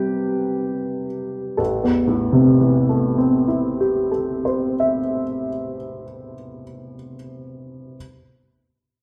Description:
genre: neoclassical minimalist piano.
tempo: 59 BPM.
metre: 4/4.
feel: rubato.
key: A minor.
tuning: A4 = 437 Hz.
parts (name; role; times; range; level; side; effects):
warm upright piano; solo; 0.0-8.0 s; A1 to E5; -21 LUFS; equal; none.
room: wet stone room reverb, RT60 1.3 s.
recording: band playing live in one room.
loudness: -20 LUFS.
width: mono.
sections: 0.0-1.6 A section; 1.6-5.7 B section.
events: slowing down 0.0-1.6.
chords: 0.0 C5; 1.6 Am7.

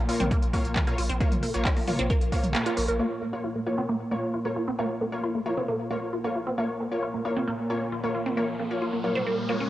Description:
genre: driving peak-time techno.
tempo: 134 BPM.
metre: 4/4.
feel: straight.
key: Bb minor.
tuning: A4 = 438 Hz.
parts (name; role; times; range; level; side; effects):
saturated sub bass; bass; 0.0-3.0 s; Bb1; -32 LUFS; equal; overdrive, sidechain pumping, low-pass filter.
deep dark ambient pad; drone; 0.0-9.7 s; Bb2 to Bb3; -33 LUFS; equal; chorus, built-in reverb, sidechain pumping, cassette tape.
resonant blip pluck; riff; 0.1-9.7 s; Bb3 to Bb4; -30 LUFS; right 1 dB; phaser, lush chorus, sidechain pumping, cassette tape, analog delay.
rave stab; stabs; 0.1-9.6 s; Bb3 to Db5; -32 LUFS; left 1 dB; chorus, built-in reverb, sidechain pumping, cassette tape, analog delay.
techno drum kit; drums; 0.1-3.0 s; handclaps, hi-hat, toms; -31 LUFS; equal; cassette tape.
electronic kick drum; drums; 0.3-2.4 s; none; -26 LUFS; equal; overdrive, cassette tape.
riser; sound effects; 7.6-9.7 s; none; -36 LUFS; right 1 dB; none.
room: moderate spring reverb, RT60 1.6 s.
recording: home recording on cassette.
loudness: -25 LUFS.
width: side -14 dB against mid.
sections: 0.0-3.0 A section; 3.0-9.7 B section.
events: filter sweep on synth arpeggio sound 0.0-3.0, 3.0-9.7; kick drops out 2.5-3.0; band accent 2.5; filter sweep on synth stab 3.0-9.7; riser 7.6-9.7.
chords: 0.0 Bbm.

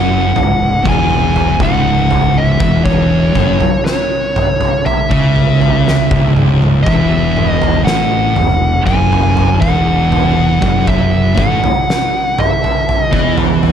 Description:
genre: stoner and doom metal.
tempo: 60 BPM.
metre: 4/4.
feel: straight.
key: C# minor.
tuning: A4 = 438 Hz.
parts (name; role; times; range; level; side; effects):
fuzz lead guitar; melody; 0.0-13.4 s; C#5 to G#5; -17 LUFS; equal; distortion, analog delay.
thick fuzz guitar; riff; 0.0-13.7 s; C#2 to E3; -17 LUFS; left 8 dB; distortion.
thick fuzz guitar; riff; 0.0-13.7 s; C#2 to E3; -17 LUFS; right 9 dB; distortion.
fuzz fingered electric bass; bass; 0.0-13.7 s; C#1 to E2; -18 LUFS; equal; overdrive, tube saturation.
oversized low-tuned drum kit; drums; 0.4-13.7 s; kick drum, snare drum, toms; -16 LUFS; equal; none.
room: small room reverb.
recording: none.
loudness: -10 LUFS.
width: side -8 dB against mid.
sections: 0.0-13.7 A section.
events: none.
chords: 0.0 C#m; 6.9 Esus2.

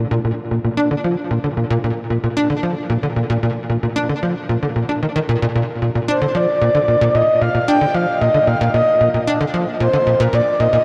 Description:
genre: ambient.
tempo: 113 BPM.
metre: 4/4.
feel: straight.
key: unclear.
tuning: A4 = 442 Hz.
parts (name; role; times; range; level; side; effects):
tight sequencer bass; riff; 0.0-10.8 s; Bb2 to D4; -20 LUFS; equal; lush chorus, tape echo.
breathy flute-like synth lead; melody; 6.1-10.8 s; Bb4 to G5; -18 LUFS; equal; lush chorus, tape echo.
room: wet huge ambient reverb, RT60 8.0 s.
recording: none.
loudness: -18 LUFS.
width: mono.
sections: 0.0-10.8 A section.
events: none.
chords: 0.0 Bbsus4.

